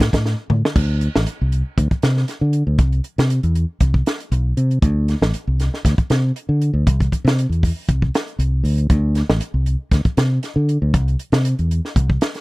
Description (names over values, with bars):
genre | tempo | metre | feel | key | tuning
afrobeat | 118 BPM | 4/4 | swing 53% on 16ths | unclear | A4 = 440 Hz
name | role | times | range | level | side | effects
fingered electric bass | bass | 0.0-12.2 s | A1 to D3 | -17 LUFS | equal | none
compact cocktail drum kit | drums | 0.0-12.4 s | crash cymbal, hi-hat, kick drum, snare drum, toms | -19 LUFS | equal | none
room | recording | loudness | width
little or no reverb | dry, close 1970s-style studio recording | -16 LUFS | side -22 dB against mid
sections
0.8-12.4 A section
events
drum fill 0.2-0.8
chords
none